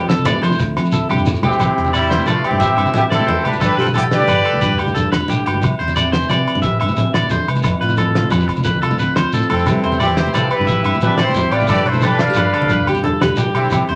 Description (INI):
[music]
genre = highlife guitar band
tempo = 119 BPM (dotted quarters)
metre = 12/8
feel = straight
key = C major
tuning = A4 = 440 Hz
[part]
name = nylon-string guitar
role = accompaniment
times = 0.0-14.0 s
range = F2 to G4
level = -25 LUFS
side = equal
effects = none
[part]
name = electric guitar at the edge of break-up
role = arpeggios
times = 0.0-14.0 s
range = G4 to E5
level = -24 LUFS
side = equal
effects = none
[part]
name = congas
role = percussion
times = 0.0-13.9 s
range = none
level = -25 LUFS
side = equal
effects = none
[part]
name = cloth-damped thuddy drum kit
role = drums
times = 0.1-14.0 s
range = hi-hat, kick drum, snare drum, toms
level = -25 LUFS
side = equal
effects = none
[part]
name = shekere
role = percussion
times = 0.1-13.8 s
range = none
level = -28 LUFS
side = equal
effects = none
[part]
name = fingered electric bass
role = bass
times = 0.2-14.0 s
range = E1 to F3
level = -24 LUFS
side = equal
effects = none
[part]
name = agogo bells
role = percussion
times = 0.3-13.9 s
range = none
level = -28 LUFS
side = equal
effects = none
[part]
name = clear horn section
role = melody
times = 1.4-4.8, 9.5-13.9 s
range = C4 to F5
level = -21 LUFS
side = equal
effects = none
[part]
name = brilliant trumpet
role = second line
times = 1.5-4.8, 9.5-13.9 s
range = G3 to B4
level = -27 LUFS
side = equal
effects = none
[sound]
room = wet studio reverb, RT60 0.5 s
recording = none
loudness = -16 LUFS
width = mono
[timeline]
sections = 0.0-1.6 A section; 1.6-14.0 B section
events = drum fill 0.6-1.6, 9.0-9.7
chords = 0.0 F; 1.6 C; 3.6 G; 5.6 C; 7.7 F; 9.7 C; 11.7 G